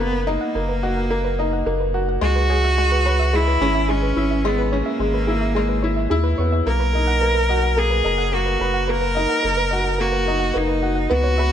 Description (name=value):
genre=piano and strings electronica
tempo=108 BPM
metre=4/4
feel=straight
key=B major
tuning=A4 = 439 Hz
part: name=clear cello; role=melody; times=0.0-11.5 s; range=A#3 to A#4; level=-22 LUFS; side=right 1 dB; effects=ping-pong delay
part: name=soft round pluck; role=arpeggios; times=0.0-11.5 s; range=G#4 to F#5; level=-28 LUFS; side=right 4 dB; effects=chorus, ping-pong delay
part: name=bright upright piano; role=riff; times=0.0-11.5 s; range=G#3 to B4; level=-23 LUFS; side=left 2 dB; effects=ping-pong delay
part: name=warm sub bass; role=bass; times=0.0-11.5 s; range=F#1 to E2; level=-22 LUFS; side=equal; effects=none
room=light reverb, small room reverb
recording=nothing above 11.0 kHz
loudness=-17 LUFS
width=side -9 dB against mid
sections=0.0-11.5 A section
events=none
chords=0.0 Bmaj7; 2.2 C#m7; 6.7 Bmaj7